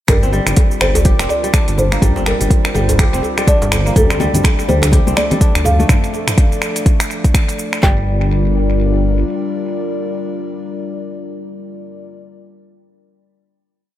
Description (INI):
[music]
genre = afro house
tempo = 124 BPM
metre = 4/4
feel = swing 59% on 16ths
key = G minor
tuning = A4 = 440 Hz
[part]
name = folk marimba with soft mallets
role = melody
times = 0.1-12.1 s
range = A4 to G5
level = -22 LUFS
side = equal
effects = vintage 12-bit sampler grit, dub echo
[part]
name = dark analog pad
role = sustained chords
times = 0.1-12.1 s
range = F3 to D5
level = -23 LUFS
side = left 1 dB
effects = chorus, sidechain pumping
[part]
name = kora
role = arpeggios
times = 0.1-10.0 s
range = G3 to G4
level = -23 LUFS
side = left 1 dB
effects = sidechain pumping, dub echo
[part]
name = dark detuned saw bass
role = bass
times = 0.1-9.2 s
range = F1 to D2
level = -16 LUFS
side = equal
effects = sidechain pumping
[part]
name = deep house drum kit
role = drums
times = 0.1-8.0 s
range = handclaps, kick drum, snare drum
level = -13 LUFS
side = equal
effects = none
[part]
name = deep house drum kit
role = drums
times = 0.1-7.8 s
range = cabasa, finger snaps, hi-hat, toms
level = -20 LUFS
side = equal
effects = tape echo
[part]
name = djembe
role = percussion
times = 0.1-5.8 s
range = none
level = -24 LUFS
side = right 1 dB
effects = tape echo
[part]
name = congas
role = percussion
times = 4.0-5.9 s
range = none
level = -21 LUFS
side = left 2 dB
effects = none
[sound]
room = light reverb, small room ambience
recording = echo-heavy mix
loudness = -12 LUFS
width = side -13 dB against mid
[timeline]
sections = 0.1-7.8 groove; 7.8-11.7 final chord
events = none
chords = 0.1 Gm7; 4.0 Dm; 7.8 Gm7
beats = | 0.09 0.57 1.05 1.54 | 2.02 2.51 2.99 3.47 | 3.96 4.44 4.93 5.41 | 5.89 6.38 6.86 7.34 | 7.83 8.31 8.80 9.28 | 9.76 10.25 10.73 11.22